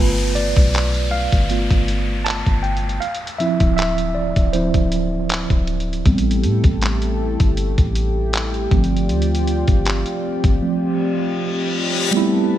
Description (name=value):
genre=contemporary R&B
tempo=79 BPM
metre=4/4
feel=swing 54% on 16ths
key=unclear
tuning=A4 = 440 Hz
part: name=mellow tine electric piano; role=accompaniment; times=0.0-12.6 s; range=F3 to A5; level=-21 LUFS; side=right 3 dB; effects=medium stereo tremolo
part: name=soft 808-style bass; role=bass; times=0.0-10.6 s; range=D1 to A2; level=-20 LUFS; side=equal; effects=none
part: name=downlifter and reverse cymbal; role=sound effects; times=0.0-12.1 s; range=none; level=-27 LUFS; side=left 3 dB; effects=none
part: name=dusty soul sampler-style drum kit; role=drums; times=0.2-10.6 s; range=handclaps, hi-hat, kick drum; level=-19 LUFS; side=equal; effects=vintage 12-bit sampler grit
part: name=chorused pulse-width pad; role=sustained chords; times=6.1-12.6 s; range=A3 to B5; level=-24 LUFS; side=left 2 dB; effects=sidechain pumping
room=light reverb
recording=none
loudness=-16 LUFS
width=side -12 dB against mid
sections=0.0-12.1 A section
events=tine electric piano solo 0.0-12.1; drums muted 10.6-12.1; reverse cymbal 11.0-12.1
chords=0.0 G7; 3.0 Dm7; 6.1 Am7; 8.7 G7sus4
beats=0.74 1.50 2.26 | 3.02 3.78 4.54 5.30 | 6.06 6.82 7.58 8.34 | 9.10 9.86 10.61 11.37 | 12.13